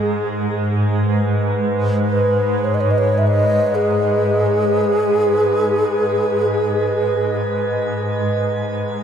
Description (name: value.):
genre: world meditative, free-time meditation music.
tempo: free time.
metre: none.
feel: none.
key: G# minor.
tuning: A4 = 440 Hz.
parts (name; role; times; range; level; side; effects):
mellow low xiao; melody; 0.0-7.5 s; G#4 to E5; -19 LUFS; equal; shimmer reverb, analog delay.
shimmering ambient pad; drone; 0.0-9.0 s; G#2; -20 LUFS; equal; chorus, built-in reverb, tremolo.
glass harmonica; texture; 1.0-8.5 s; B4 to D#5; -23 LUFS; right 2 dB; shimmer reverb.
room: wet huge ambient reverb, RT60 7.8 s.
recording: dreamy mix soaked in reverb.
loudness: -16 LUFS.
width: side -8 dB against mid.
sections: 0.0-7.9 A section; 7.9-9.0 A section.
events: none.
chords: none.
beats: free time.